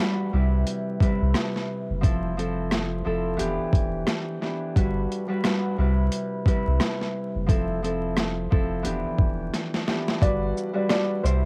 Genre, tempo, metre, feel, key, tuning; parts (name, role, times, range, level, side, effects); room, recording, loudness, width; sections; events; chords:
hip hop, boom-bap hip-hop; 88 BPM; 4/4; swing 60% on 16ths; G major; A4 = 439 Hz
Celtic harp; accompaniment; 0.0-11.5 s; G2 to C5; -29 LUFS; equal; high-pass filter, low-pass filter, cassette tape
dusty soul sampler-style drum kit; drums; 0.0-11.4 s; hi-hat, kick drum, rim click, shaker, snare drum; -26 LUFS; equal; overdrive
soft dub sub bass; bass; 0.3-11.5 s; E1 to C2; -29 LUFS; equal; transformer saturation
dark upright piano; melody; 10.2-11.5 s; C5 to D5; -30 LUFS; equal; high-pass filter, low-pass filter, cassette tape
little or no reverb; home recording on cassette, vinyl crackle; -25 LUFS; mono
0.0-10.2 A section; 10.2-11.5 B section
drum fill 9.5-10.2
0.3 Cmaj7; 2.0 Fmaj7; 3.4 Em7; 4.8 Gmaj7; 5.8 Cmaj7; 7.5 Fmaj7; 8.9 Em7; 10.2 Gmaj7